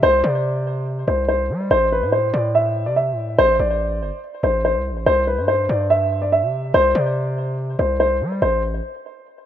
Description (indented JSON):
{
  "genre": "hip hop, drill",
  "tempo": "143 BPM",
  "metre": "4/4",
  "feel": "half-time",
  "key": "unclear",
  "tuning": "A4 = 442 Hz",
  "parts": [
    { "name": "dark concert grand piano", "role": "melody", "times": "0.0-8.6 s", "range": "B4 to E5", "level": "-18 LUFS", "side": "equal", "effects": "low-pass filter, ping-pong delay" },
    { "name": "distorted 808-style bass", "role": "bass", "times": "0.0-8.8 s", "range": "G1 to G3", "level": "-23 LUFS", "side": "equal", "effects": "distortion" }
  ],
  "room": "light reverb",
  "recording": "rough home demo mix",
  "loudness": "-17 LUFS",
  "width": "side -10 dB against mid",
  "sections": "0.0-8.4 A section; 8.4-9.5 B section",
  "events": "none",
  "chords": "0.0 Csus2; 1.7 Am; 5.1 Csus2; 8.4 N.C."
}